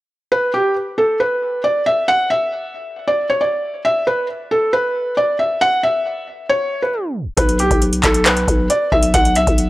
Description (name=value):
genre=hip hop, trap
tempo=136 BPM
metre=4/4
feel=half-time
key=B minor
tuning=A4 = 440 Hz
part: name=felt-muted upright piano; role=melody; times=0.3-9.7 s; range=G4 to F#5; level=-16 LUFS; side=equal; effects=none
part: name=growling 808-style bass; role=bass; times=7.4-9.7 s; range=B1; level=-18 LUFS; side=equal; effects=none
part: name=booming analog drum machine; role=drums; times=7.4-9.7 s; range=handclaps, hi-hat, kick drum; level=-17 LUFS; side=equal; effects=overdrive
room=digital ambience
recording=dry, gritty hardware recording, tape stop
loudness=-15 LUFS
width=side -18 dB against mid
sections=0.3-7.4 A section; 7.4-9.7 B section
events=tape stop 6.9-7.4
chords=none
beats=| 0.32 0.76 1.20 1.64 | 2.08 2.52 2.96 3.40 | 3.85 4.29 4.73 5.17 | 5.61 6.05 6.49 6.93 | 7.38 7.82 8.26 8.70 | 9.14 9.58